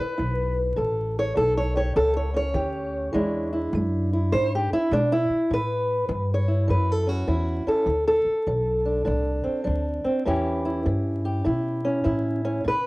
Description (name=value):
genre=acoustic country blues, solo or duo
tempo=101 BPM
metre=4/4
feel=swing 64% on 8ths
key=A mixolydian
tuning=A4 = 440 Hz
part: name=fingerpicked old ladder-braced acoustic guitar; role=melody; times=0.0-12.9 s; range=A2 to C#5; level=-23 LUFS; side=equal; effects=cassette tape, plate reverb
part: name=upright bass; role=bass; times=0.2-12.9 s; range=A1 to C#3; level=-26 LUFS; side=equal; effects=none
room=moderate booth ambience, RT60 0.2 s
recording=home recording on cassette, vinyl crackle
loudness=-22 LUFS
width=side -21 dB against mid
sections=0.0-5.5 A section; 5.5-12.9 B section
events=steel-string acoustic guitar solo 0.0-5.5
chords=0.0 E5; 0.8 A7; 3.1 E7; 5.5 A7; 7.9 D7; 10.3 A7